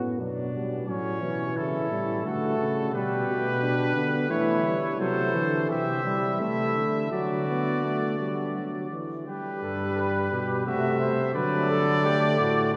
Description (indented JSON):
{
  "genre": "classical, imitative canzona for brass ensemble",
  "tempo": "86 BPM",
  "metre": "3/4",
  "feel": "straight",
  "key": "unclear",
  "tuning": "A4 = 441 Hz",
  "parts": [
    { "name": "mellow flugelhorn", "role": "second line", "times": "0.0-12.8 s", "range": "C#4 to C5", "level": "-34 LUFS", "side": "equal", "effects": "none" },
    { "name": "mellow trombone", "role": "accompaniment", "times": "0.0-12.7 s", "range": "E3 to D4", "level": "-32 LUFS", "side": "equal", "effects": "none" },
    { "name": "mellow bass trombone", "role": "bass", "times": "0.0-12.8 s", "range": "G2 to E3", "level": "-32 LUFS", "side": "equal", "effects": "none" },
    { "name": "clear trumpet", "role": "melody", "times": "0.9-12.8 s", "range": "A4 to E5", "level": "-33 LUFS", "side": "equal", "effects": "none" }
  ],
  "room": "wet cathedral reverb, RT60 4.8 s",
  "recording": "recorded in a church or concert hall",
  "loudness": "-26 LUFS",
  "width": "mono",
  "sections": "0.0-9.3 A section; 9.3-12.8 B section",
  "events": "none",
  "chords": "0.2 Bm; 0.9 A; 2.3 D; 2.9 G/B; 4.3 C#dim/E; 5.0 C; 7.1 D; 9.3 G; 10.7 Am/C; 11.3 D"
}